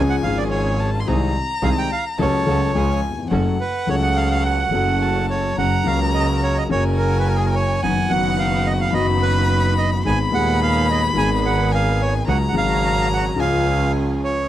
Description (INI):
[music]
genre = tango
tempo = 107 BPM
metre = 4/4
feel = rubato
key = F# harmonic minor, F# major from 5.6 s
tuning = A4 = 440 Hz
[part]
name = bandoneon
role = melody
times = 0.0-14.5 s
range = G#4 to G#5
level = -23 LUFS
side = right 4 dB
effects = none
[part]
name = warm violin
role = second line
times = 0.0-14.2 s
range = F#5 to B#5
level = -25 LUFS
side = left 3 dB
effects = none
[part]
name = dark concert grand piano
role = accompaniment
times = 0.0-14.5 s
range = D#1 to A4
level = -22 LUFS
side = left 4 dB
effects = none
[part]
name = rich studio string section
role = stabs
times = 0.0-14.5 s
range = B#3 to B4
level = -32 LUFS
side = right 5 dB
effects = none
[part]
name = rich double bass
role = bass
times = 0.0-14.5 s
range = F#1 to D#2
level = -21 LUFS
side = right 2 dB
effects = none
[sound]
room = small room reverb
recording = dry, close 1970s-style studio recording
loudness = -17 LUFS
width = side -12 dB against mid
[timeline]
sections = 0.0-5.6 A section; 5.6-14.5 B section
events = none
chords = 0.0 C#; 1.1 G#/B#; 2.2 F#m/C#; 2.8 C#; 3.3 F#m; 5.6 F#; 7.8 B/F#; 10.1 G#m; 12.3 C#sus4; 13.4 C#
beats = 0.52 | 1.08 1.63 2.19 2.75 | 3.32 3.88 4.44 5.01 | 5.58 6.15 6.71 7.27 | 7.83 8.39 8.95 9.50 | 10.06 10.61 11.17 11.72 | 12.27 12.83 13.39 13.95